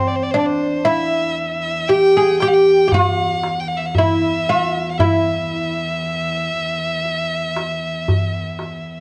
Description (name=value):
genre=Arabic maqam ensemble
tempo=116 BPM (eighths)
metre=10/8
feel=straight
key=E maqam saba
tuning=A4 = 439 Hz
part: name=oud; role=melody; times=0.0-9.0 s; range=C4 to G#4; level=-18 LUFS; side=equal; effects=none
part: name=clear violin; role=second line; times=0.0-9.0 s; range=C5 to G5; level=-25 LUFS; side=equal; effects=cassette tape
part: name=rich cello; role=drone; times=0.0-9.0 s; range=E2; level=-32 LUFS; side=equal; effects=cassette tape
part: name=darbuka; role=percussion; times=0.3-8.8 s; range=none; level=-23 LUFS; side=equal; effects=none
room=light reverb, studio reverb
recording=home recording on cassette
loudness=-18 LUFS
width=mono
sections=0.0-9.0 A section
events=none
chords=none